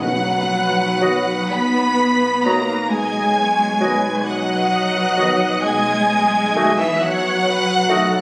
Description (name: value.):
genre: classical.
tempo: 39-46 BPM (dotted quarters).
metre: 12/8.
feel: rubato.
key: B major.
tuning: A4 = 441 Hz.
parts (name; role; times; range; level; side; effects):
warm symphonic violin section; melody; 0.0-8.2 s; E6 to B6; -29 LUFS; equal; none.
mellow hollow flute section; second line; 0.0-8.2 s; E5 to B5; -26 LUFS; equal; none.
rich symphonic violin section; second line; 0.0-8.2 s; E5 to B5; -24 LUFS; equal; none.
rich symphonic viola section; accompaniment; 0.0-8.2 s; A4 to D#5; -29 LUFS; equal; none.
mellow French horn section; sustained chords; 0.0-8.2 s; E3 to B3; -25 LUFS; equal; none.
concert harp; arpeggios; 0.0-8.2 s; B2 to D#5; -31 LUFS; equal; none.
rich symphonic cello section; bass; 0.0-8.2 s; E3 to B3; -28 LUFS; equal; none.
rich symphonic double bass section; bass; 0.0-8.2 s; B1; -40 LUFS; equal; none.
timpani; percussion; 0.0-1.5 s; B2; -31 LUFS; equal; none.
clear clarinet; second line; 1.0-8.0 s; F#4; -28 LUFS; equal; none.
clear oboe; second line; 1.0-8.1 s; D#5; -28 LUFS; equal; none.
mellow bassoon; accompaniment; 1.0-8.0 s; F#3 to A3; -29 LUFS; equal; none.
dark trombone section; sustained chords; 1.0-8.1 s; D#3 to B3; -32 LUFS; equal; none.
room: wet scoring stage reverb, RT60 1.7 s.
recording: recorded on a phone in the room, studio reverb, compression.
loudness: -18 LUFS.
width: mono.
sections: 0.0-8.2 A section.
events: none.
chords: 0.0 B; 5.6 B7.